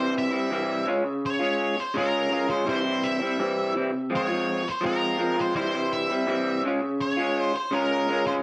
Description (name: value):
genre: rock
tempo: 83 BPM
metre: 4/4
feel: straight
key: unclear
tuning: A4 = 440 Hz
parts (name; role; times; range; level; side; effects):
- octave-fuzz lead guitar; melody; 0.0-8.3 s; Bb4 to E5; -31 LUFS; equal; wah, distortion, plate reverb, analog delay
- electric guitar through a small old amp; riff; 0.0-8.4 s; C3 to F4; -27 LUFS; equal; harmonic tremolo
room: moderate studio reverb, RT60 0.6 s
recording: none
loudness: -26 LUFS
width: mono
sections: 0.0-8.4 A section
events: none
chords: 0.0 C; 0.9 Db; 2.7 C; 4.1 Fm; 5.6 C; 6.6 Db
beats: 0.51 1.23 1.95 | 2.67 3.40 4.12 4.84 | 5.56 6.28 7.00 7.72